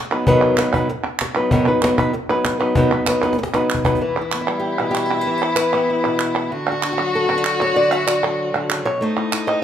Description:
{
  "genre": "flamenco",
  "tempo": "192 BPM",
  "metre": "4/4",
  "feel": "straight",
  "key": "unclear",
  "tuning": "A4 = 440 Hz",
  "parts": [
    { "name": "flamenco guitar", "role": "melody", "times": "0.1-9.6 s", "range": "B2 to E5", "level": "-19 LUFS", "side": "equal", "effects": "none" },
    { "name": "palmas hand claps", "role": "percussion", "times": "0.1-9.6 s", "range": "none", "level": "-24 LUFS", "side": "right 4 dB", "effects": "none" },
    { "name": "cajon", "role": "percussion", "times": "0.3-4.0 s", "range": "none", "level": "-22 LUFS", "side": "left 1 dB", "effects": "none" },
    { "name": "clear violin", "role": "second line", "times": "4.0-9.6 s", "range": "D#4 to F#4", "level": "-22 LUFS", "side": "left 2 dB", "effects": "none" }
  ],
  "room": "moderate large studio reverb, RT60 1.1 s",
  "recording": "band playing live in one room",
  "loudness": "-16 LUFS",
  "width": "side -9 dB against mid",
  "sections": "0.0-4.0 A section; 4.0-9.6 B section",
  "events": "drum fill 3.2-4.0",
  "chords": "0.0 B; 4.0 Em; 6.5 D; 9.0 Am",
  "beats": "| 0.27 0.58 0.89 1.20 | 1.51 1.82 2.13 2.45 | 2.76 3.07 3.38 3.69 | 4.01 4.32 4.63 4.94 | 5.26 5.57 5.88 6.20 | 6.51 6.82 7.14 7.45 | 7.76 8.08 8.39 8.70 | 9.02 9.33"
}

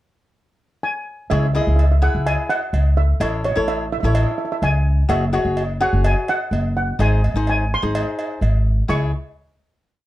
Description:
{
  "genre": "calypso",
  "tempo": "127 BPM",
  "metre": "4/4",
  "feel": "straight",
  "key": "C# minor",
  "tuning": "A4 = 444 Hz",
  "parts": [
    { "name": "steel pan", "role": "melody", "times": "0.8-9.1 s", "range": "C#5 to C#6", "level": "-24 LUFS", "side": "right 2 dB", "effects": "none" },
    { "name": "cavaquinho", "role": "accompaniment", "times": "1.3-9.1 s", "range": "D#4 to E5", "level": "-24 LUFS", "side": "left 3 dB", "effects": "none" },
    { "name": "upright bass", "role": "bass", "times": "1.3-9.1 s", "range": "F#1 to C#2", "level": "-18 LUFS", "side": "equal", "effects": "none" },
    { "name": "cowbell", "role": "percussion", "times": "1.3-9.1 s", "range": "none", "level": "-28 LUFS", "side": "right 2 dB", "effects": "none" }
  ],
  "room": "light reverb",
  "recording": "dark, warm production",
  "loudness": "-17 LUFS",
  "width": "side -15 dB against mid",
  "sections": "0.0-1.3 pickup bar; 1.3-8.9 verse; 8.9-10.1 final chord",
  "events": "none",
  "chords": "0.0 N.C.; 1.3 C#m; 3.2 A; 5.1 F#sus2; 7.0 G#; 8.9 C#m",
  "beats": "0.37 0.84 | 1.32 1.79 2.26 2.74 | 3.21 3.68 4.16 4.63 | 5.10 5.58 6.05 6.52 | 7.00 7.47 7.94 8.42 | 8.89"
}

